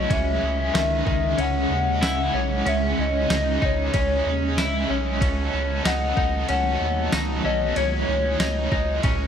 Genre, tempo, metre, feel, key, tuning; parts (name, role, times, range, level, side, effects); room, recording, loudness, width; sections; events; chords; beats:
dream pop; 94 BPM; 4/4; straight; C# minor; A4 = 440 Hz
warbly nostalgic lead; melody; 0.0-9.0 s; C#5 to F#5; -26 LUFS; left 3 dB; chorus, tape echo
overdriven electric guitar; accompaniment; 0.0-9.3 s; C#3 to A4; -30 LUFS; right 4 dB; tremolo, lush chorus
granular cloud pad; sustained chords; 0.0-9.3 s; C#3 to D#5; -29 LUFS; right 1 dB; built-in reverb
twelve-string electric guitar; arpeggios; 0.0-9.3 s; D#3 to E4; -28 LUFS; left 3 dB; lush chorus, tape echo
round analog bass; bass; 0.0-9.3 s; B1 to D#2; -26 LUFS; equal
detuned 8-bit digital drum machine; drums; 0.1-9.2 s; kick drum, ride cymbal, snare drum, tambourine, toms; -26 LUFS; equal
light reverb; -20 LUFS; side -8 dB against mid
0.0-9.3 A section
drum fill 9.0
0.1 C#madd9; 5.2 B7/C#; 7.8 C#madd9
| 0.10 0.74 1.38 2.02 | 2.66 3.29 3.93 4.57 | 5.21 5.85 6.49 7.12 | 7.76 8.40 9.04